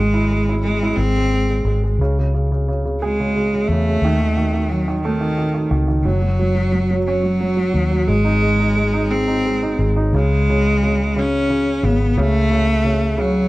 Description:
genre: six-eight pop ballad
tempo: 59 BPM (dotted quarters)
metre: 6/8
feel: straight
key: C# minor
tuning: A4 = 440 Hz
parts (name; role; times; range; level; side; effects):
- clear cello; melody; 0.0-13.5 s; D#3 to C#4; -20 LUFS; equal; none
- clear upright piano; accompaniment; 0.0-13.5 s; C#3 to G#4; -22 LUFS; right 2 dB; none
- vintage muted fingered electric bass; bass; 0.0-13.5 s; F#1 to E2; -20 LUFS; equal; none
room: small room ambience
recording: dry, close 1970s-style studio recording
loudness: -16 LUFS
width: side -18 dB against mid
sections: 0.0-10.1 A section; 10.1-13.5 B section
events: none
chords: 0.0 E/G#; 1.0 G#; 2.0 C#m; 4.0 F#m6 (rootless); 6.1 F#5; 8.1 G#; 10.1 C#5; 12.2 F#m/C#

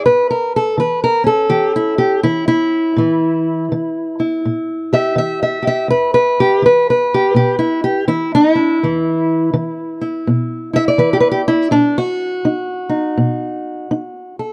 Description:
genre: acoustic country blues, solo or duo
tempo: 82 BPM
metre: 4/4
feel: swing 63% on 8ths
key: unclear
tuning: A4 = 436 Hz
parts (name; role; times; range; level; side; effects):
- fingerpicked steel-string acoustic guitar; solo; 0.0-14.5 s; E2 to E5; -16 LUFS; equal; none
room: little or no reverb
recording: dry, close 1970s-style studio recording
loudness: -16 LUFS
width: mono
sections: 0.0-14.5 A section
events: none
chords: 0.1 A; 3.0 Edim/Bb; 5.9 E5; 11.7 B

